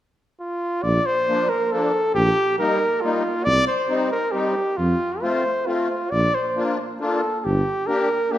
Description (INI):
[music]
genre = alpine folk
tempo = 136 BPM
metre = 3/4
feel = straight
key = Bb major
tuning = A4 = 438 Hz
[part]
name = mellow trumpet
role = melody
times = 0.4-8.4 s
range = F4 to D5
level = -21 LUFS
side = equal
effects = tape echo
[part]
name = mellow tuba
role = bass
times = 0.8-7.6 s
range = G1 to F2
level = -23 LUFS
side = right 1 dB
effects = none
[part]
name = musette accordion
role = accompaniment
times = 1.3-8.4 s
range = F3 to G4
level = -25 LUFS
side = left 2 dB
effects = none
[sound]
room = wet recital hall reverb, RT60 1.4 s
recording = none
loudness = -19 LUFS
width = side -12 dB against mid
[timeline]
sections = 0.8-8.4 A section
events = none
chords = 0.0 N.C.; 0.8 Bb; 2.2 Ebadd9/Bb; 3.5 Cm; 4.8 F; 6.1 Bb; 7.5 Gm